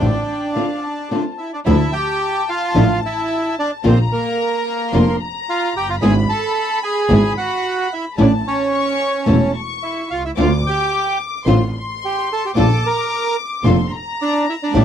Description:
tango; 110 BPM; 4/4; rubato; D minor; A4 = 441 Hz
bandoneon; melody; 0.0-14.8 s; Bb3 to Bb5; -19 LUFS; right 2 dB
warm studio violin section; second line; 0.0-14.8 s; F5 to D6; -25 LUFS; left 6 dB
nylon-string guitar; accompaniment; 0.0-14.8 s; D3 to G#4; -17 LUFS; left 3 dB
warm studio string section; stabs; 0.0-14.8 s; F3 to A4; -24 LUFS; right 2 dB
clear double bass; bass; 0.0-14.8 s; E1 to D2; -17 LUFS; right 1 dB
little or no reverb; dry, close 1970s-style studio recording, lossy compression artefacts; -16 LUFS; side -9 dB against mid
0.0-1.7 A section; 1.7-14.8 B section
break 0.6-1.7
0.0 Dm7; 1.7 Dmadd9; 3.8 Bb; 6.0 E7/G#; 8.2 A; 10.4 Dm7; 12.6 Bbmaj7

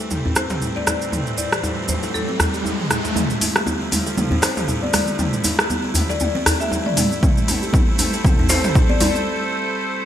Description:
afro house; 118 BPM; 4/4; swing 57% on 16ths; A4 = 440 Hz
bright chamber string section; sustained chords; 0.0-10.1 s; A2 to C5; -28 LUFS; right 2 dB; sidechain pumping
buzzing kalimba; arpeggios; 0.0-8.9 s; G3 to A4; -27 LUFS; equal; sidechain pumping, low-pass filter, ping-pong delay
cabasa; percussion; 0.0-9.2 s; -27 LUFS; right 5 dB
riser; sound effects; 0.8-3.2 s; -29 LUFS; right 1 dB
deep house drum kit; drums; 0.1-9.1 s; hi-hat, rim click, toms; -22 LUFS; equal; overdrive
djembe; percussion; 0.1-9.1 s; -25 LUFS; left 1 dB
marimba with medium mallets; melody; 0.4-9.2 s; A4 to E5; -28 LUFS; left 3 dB; low-pass filter, ping-pong delay
congas; percussion; 3.3-9.2 s; -27 LUFS; right 3 dB
electronic kick drum; drums; 7.2-8.9 s; -17 LUFS; equal; overdrive
moderate plate reverb, RT60 2.0 s, small room ambience; bright 1980s-style digital production; -17 LUFS; side -10 dB against mid
0.0-3.2 A section; 3.2-10.1 B section
riser 0.8-3.2; build-up 3.2-10.1; drum fill 3.2-9.3; filter sweep on marimba 3.2-10.1; break 9.3-10.1
0.0 Am7; 3.2 Dm; 7.2 Am7

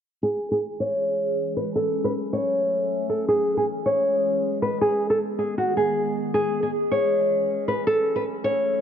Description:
hip hop; 157 BPM; 4/4; half-time; C# minor; A4 = 439 Hz
nylon-string guitar; melody; 0.2-8.8 s; F#4 to C#5; -22 LUFS; equal; low-pass filter, ping-pong delay
warbly tape-like pad; sustained chords; 0.9-8.8 s; D#3 to A4; -28 LUFS; equal; chorus, built-in reverb, phaser, low-pass filter
moderate lush hall reverb, RT60 2.6 s; dark, warm production, nothing above 7.6 kHz; -21 LUFS; side -8 dB against mid
0.2-8.8 A section
filter sweep 0.2-8.8
0.2 C#m; 1.8 F#m; 3.3 C#m; 4.8 G#m; 6.3 C#m; 7.9 F#m

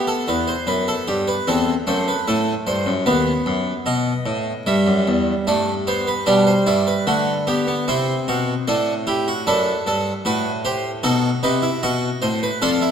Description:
classical, baroque-style 4-part fugue for harpsichord; 75 BPM; 4/4; straight; A4 = 441 Hz
harpsichord; solo; 0.0-12.9 s; D#2 to E5; -18 LUFS; equal
wet concert hall reverb, RT60 2.3 s; -18 LUFS; side -8 dB against mid
0.0-6.3 A section; 6.3-12.9 B section
0.0 F#m7b5/E; 3.1 B7/D#; 4.7 Em; 6.3 G; 7.9 C; 9.5 F#dim; 11.0 B

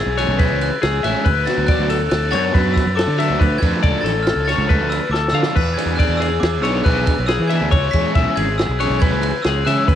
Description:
math rock and midwest emo; 139 BPM; 5/4; straight; A4 = 443 Hz
glockenspiel with hard plastic mallets; melody; 0.0-10.0 s; D6 to B6; -24 LUFS; right 2 dB; cassette tape
twelve-string electric guitar; arpeggios; 0.0-10.0 s; G#4 to F5; -22 LUFS; left 10 dB; cassette tape
fuzz fingered electric bass; bass; 0.0-10.0 s; G#1 to E3; -21 LUFS; right 1 dB; overdrive
crunchy overdriven guitar; riff; 0.2-9.9 s; E3 to A4; -23 LUFS; right 2 dB; cassette tape
compact cocktail drum kit; drums; 0.2-10.0 s; crash cymbal, kick drum, ride cymbal, snare drum; -20 LUFS; right 1 dB; cassette tape
studio ambience; home recording on cassette; -15 LUFS; side -10 dB against mid
0.0-10.0 A section
drum fill 5.1-5.6
0.0 C#m; 1.2 Bm7/D; 3.4 Dm; 5.6 E7; 7.7 C#m

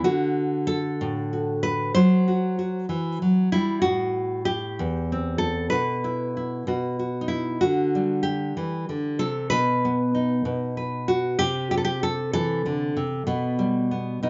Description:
folk, solo fingerstyle acoustic guitar; 64 BPM (dotted quarters); 6/8; rubato; A4 = 440 Hz
nylon-string guitar; solo; 0.0-14.3 s; E2 to C5; -25 LUFS; equal
moderate studio reverb, RT60 0.8 s; nothing above 7.6 kHz; -25 LUFS; mono
0.1-14.3 A section
0.1 D; 2.0 Emadd9; 3.8 Am; 5.7 E5/B; 6.7 B; 7.6 Dsus4; 9.5 B; 11.4 Am/C; 13.3 Gadd9/B

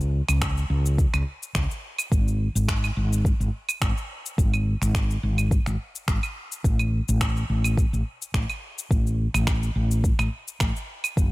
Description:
organic downtempo; 106 BPM; 4/4; swing 54% on 16ths; A4 = 440 Hz
woody fretless electric bass; bass; 0.0-11.3 s; F#1 to C#2; -23 LUFS; equal; wide subtle chorus, sidechain pumping
electronic shaker, finger snaps and claves; drums; 0.0-11.3 s; -30 LUFS; right 1 dB
electronic kick drum; drums; 0.4-11.3 s; -24 LUFS; equal
digital ambience; -22 LUFS; side -20 dB against mid
0.0-11.3 A section

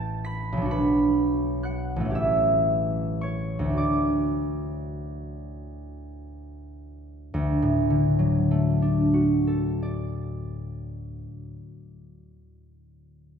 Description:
classical, solo harp piece; 32-44 BPM (dotted quarters); 6/8; rubato; D major; A4 = 440 Hz
concert harp; solo; 0.0-12.3 s; A1 to B6; -24 LUFS; equal
wet concert hall reverb, RT60 2.1 s; heard from further back in the room; -22 LUFS; side -7 dB against mid
0.0-7.3 A section; 7.3-10.8 B section
slowing down 0.0-7.3
0.0 A7; 0.7 Bm; 2.1 A7; 3.8 D

